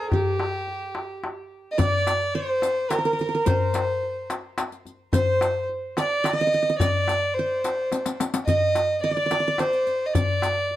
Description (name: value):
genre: Arabic maqam ensemble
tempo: 108 BPM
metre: 3/4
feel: straight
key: unclear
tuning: A4 = 436 Hz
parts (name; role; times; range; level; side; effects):
- rich violin; melody; 0.0-10.8 s; G4 to Eb5; -24 LUFS; right 1 dB; tape echo
- qanun; second line; 0.0-10.8 s; G4 to Eb5; -29 LUFS; right 3 dB; none
- darbuka; percussion; 0.1-10.8 s; none; -26 LUFS; left 2 dB; none
- riq; percussion; 1.8-10.6 s; none; -32 LUFS; left 4 dB; none
room: light reverb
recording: dark, warm production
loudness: -21 LUFS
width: side -13 dB against mid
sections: 0.0-1.8 A section; 1.8-10.8 B section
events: drum fill 7.9-8.5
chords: none